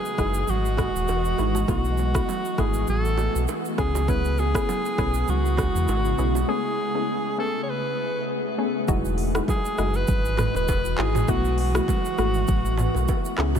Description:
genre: afrobeats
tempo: 100 BPM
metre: 4/4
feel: swing 55% on 16ths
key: E major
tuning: A4 = 440 Hz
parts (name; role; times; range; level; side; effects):
- edgy alto saxophone; melody; 0.0-13.4 s; F#4 to C#5; -28 LUFS; equal; ping-pong delay
- ethereal airy pad; sustained chords; 0.0-13.6 s; C#3 to D#5; -30 LUFS; equal; ensemble chorus, built-in reverb, sidechain pumping
- afro-pop drum kit; drums; 0.1-13.6 s; handclaps, hi-hat, kick drum, rim click, shaker, toms; -28 LUFS; equal; none
- soft round pluck; accompaniment; 0.2-13.6 s; G#3 to G#4; -31 LUFS; left 2 dB; chorus
- sub bass with octave; bass; 0.2-13.6 s; D#1 to E2; -25 LUFS; equal; none
- congas and bongos; percussion; 0.5-13.6 s; none; -36 LUFS; right 9 dB; none
room: light reverb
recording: none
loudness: -21 LUFS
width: side -8 dB against mid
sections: 0.0-8.9 A section; 8.9-13.6 B section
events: break 6.5-8.9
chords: 0.0 Emaj9; 1.7 B7sus4; 3.8 C#m7; 6.5 Amaj9; 8.9 Emaj9; 11.3 B7sus4

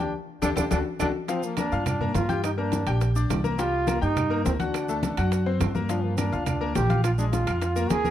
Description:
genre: latin, salsa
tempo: 208 BPM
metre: 4/4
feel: straight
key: G minor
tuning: A4 = 440 Hz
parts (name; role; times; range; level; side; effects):
- bright trombone; melody; 0.0-8.1 s; Bb3 to Ab4; -29 LUFS; right 2 dB; none
- bright concert grand piano; accompaniment; 0.0-8.1 s; F3 to G6; -30 LUFS; left 7 dB; none
- upright bass; bass; 0.0-8.1 s; Bb1 to G2; -27 LUFS; right 1 dB; none
- bongos; percussion; 0.4-8.1 s; none; -34 LUFS; left 7 dB; none
- claves; percussion; 0.4-8.1 s; none; -40 LUFS; right 10 dB; none
- congas; percussion; 0.4-8.1 s; none; -32 LUFS; left 1 dB; none
- maracas; percussion; 0.4-8.1 s; none; -42 LUFS; right 18 dB; none
- timbales; percussion; 0.4-8.0 s; none; -36 LUFS; right 10 dB; none
room: studio reverb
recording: dry, close 1970s-style studio recording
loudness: -23 LUFS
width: side -11 dB against mid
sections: 0.0-1.3 A section; 1.3-8.1 A section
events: band accent 0.1-1.3; drum fill 0.4-1.3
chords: 0.1 Dsus4; 0.7 D; 1.3 Gm7; 2.4 Bb69; 3.6 Cm7; 4.7 D7; 5.9 Gm7; 7.0 Bb5

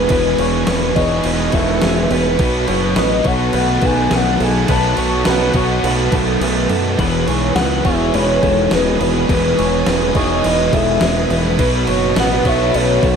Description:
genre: rock, shoegaze and dream pop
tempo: 104 BPM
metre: 4/4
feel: straight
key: E major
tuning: A4 = 440 Hz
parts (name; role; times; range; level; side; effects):
- soft octave-layered synth lead; melody; 0.0-13.2 s; B4 to A5; -20 LUFS; left 2 dB; chorus, phaser, tape echo
- phased string machine; sustained chords; 0.0-13.2 s; B4 to D#6; -26 LUFS; right 1 dB; ensemble chorus, phaser
- electric guitar through a small old amp; arpeggios; 0.0-13.2 s; G#4 to C#5; -23 LUFS; right 4 dB; analog chorus, tape echo
- overdriven electric guitar; riff; 0.0-13.2 s; E2 to B3; -22 LUFS; equal; none
- overdriven semi-hollow guitar; riff; 0.0-13.2 s; E2 to G#4; -22 LUFS; right 11 dB; reverse reverb
- thick fuzz guitar; riff; 0.0-13.2 s; B2 to A4; -24 LUFS; left 10 dB; distortion, ensemble chorus
- growling fingered electric bass; bass; 0.0-13.2 s; E1 to F#2; -20 LUFS; equal; overdrive
- gated 80s digital drum machine; drums; 0.1-13.2 s; crash cymbal, kick drum, snare drum; -21 LUFS; equal; gated reverb, gated reverb snare, overdrive
room: light reverb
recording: none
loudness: -13 LUFS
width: side -6 dB against mid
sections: 0.0-13.2 A section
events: kick and snare drop out 6.4-7.0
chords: 0.0 Emaj7; 2.4 B7; 7.0 Emaj7; 11.6 B7

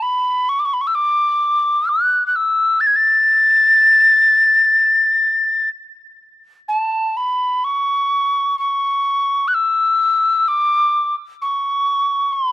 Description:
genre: celtic folk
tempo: 64 BPM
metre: 4/4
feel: rubato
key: A major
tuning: A4 = 441 Hz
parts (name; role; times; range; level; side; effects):
- mellow hollow wooden whistle; solo; 0.0-12.5 s; A5 to A6; -13 LUFS; left 1 dB; none
room: small room ambience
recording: rough home demo mix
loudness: -13 LUFS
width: side -15 dB against mid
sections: 0.0-6.7 A section; 6.7-12.5 B section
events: none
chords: none

